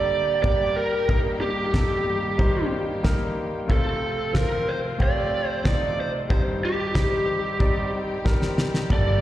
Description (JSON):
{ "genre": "piano-driven pop", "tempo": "92 BPM", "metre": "4/4", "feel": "straight", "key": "unclear", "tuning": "A4 = 440 Hz", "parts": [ { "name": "lead guitar through a small cranked amp", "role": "melody", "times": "0.0-9.2 s", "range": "G4 to D5", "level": "-25 LUFS", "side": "right 2 dB", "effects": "overdrive, slapback echo, digital delay" }, { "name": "clear baby grand piano", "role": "accompaniment", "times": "0.0-9.2 s", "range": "G2 to A5", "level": "-29 LUFS", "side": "left 2 dB", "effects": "slapback echo" }, { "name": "warm symphonic string section", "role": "sustained chords", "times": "0.0-9.2 s", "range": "G2 to G4", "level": "-33 LUFS", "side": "equal", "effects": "none" }, { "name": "damped 70s drum kit", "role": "drums", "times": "0.4-9.1 s", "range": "kick drum, snare drum", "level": "-22 LUFS", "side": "equal", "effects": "none" }, { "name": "fingered electric bass", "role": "bass", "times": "8.9-9.2 s", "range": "G1", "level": "-22 LUFS", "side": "equal", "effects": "none" } ], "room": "moderate digital room reverb, RT60 1.1 s", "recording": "live gig heard through the venue's PA, recital hall reverb", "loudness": "-21 LUFS", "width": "side -13 dB against mid", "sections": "0.0-9.2 A section", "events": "drum fill 8.3-8.9", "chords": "0.0 Gmadd9; 1.1 Eb/G; 3.7 F; 6.3 Cm" }